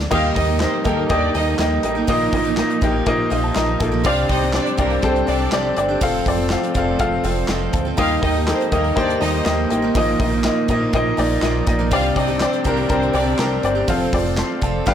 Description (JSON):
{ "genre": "piano-driven pop", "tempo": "122 BPM", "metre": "4/4", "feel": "straight", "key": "unclear", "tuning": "A4 = 440 Hz", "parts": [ { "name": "clear upright piano", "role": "accompaniment", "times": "0.0-14.9 s", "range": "G2 to C6", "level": "-19 LUFS", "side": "left 3 dB", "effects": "plate reverb" }, { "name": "warm studio string section", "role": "sustained chords", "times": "0.0-14.9 s", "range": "D3 to Eb4", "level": "-30 LUFS", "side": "right 3 dB", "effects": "none" }, { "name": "chorused synth bass", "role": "bass", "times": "0.0-14.9 s", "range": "F1 to Eb2", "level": "-24 LUFS", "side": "equal", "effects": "none" }, { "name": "warm symphonic violin section", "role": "second line", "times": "0.1-13.3 s", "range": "Bb3 to F5", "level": "-25 LUFS", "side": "right 3 dB", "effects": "plate reverb" }, { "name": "picked steel-string acoustic guitar", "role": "riff", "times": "0.1-14.9 s", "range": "G2 to Bb4", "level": "-26 LUFS", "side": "right 10 dB", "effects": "none" }, { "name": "modern studio drum kit", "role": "drums", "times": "0.1-14.9 s", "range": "crash cymbal, handclaps, hi-hat, kick drum, snare drum", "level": "-25 LUFS", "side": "right 1 dB", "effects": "soft clipping on kick" } ], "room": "light reverb", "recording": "blown-out, overdriven recording, overdrive", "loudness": "-16 LUFS", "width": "side -9 dB against mid", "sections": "0.1-14.9 A section", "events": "upright piano fill 3.1-4.0", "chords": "0.1 Eb; 2.1 Bbsus4; 4.0 Csus2; 6.0 F; 8.0 Eb; 10.0 Bbsus4; 11.9 Csus2; 13.9 F", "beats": "| 0.12 0.61 1.10 1.59 | 2.08 2.57 3.07 3.56 | 4.05 4.54 5.03 5.53 | 6.02 6.51 7.00 7.49 | 7.98 8.48 8.97 9.46 | 9.95 10.44 10.94 11.43 | 11.92 12.41 12.90 13.39 | 13.89 14.38 14.87" }